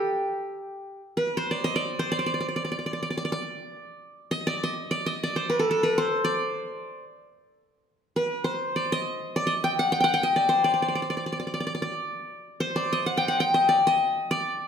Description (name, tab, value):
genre	Turkish makam ensemble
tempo	free time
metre	none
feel	none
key	D makam hicaz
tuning	A4 = 441 Hz
part	qanun	solo	0.0-14.7 s	G4 to G5	-24 LUFS	equal	slapback echo
room	wet recital hall reverb, RT60 1.7 s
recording	none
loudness	-24 LUFS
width	side -7 dB against mid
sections	0.0-14.7 A section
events	none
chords	none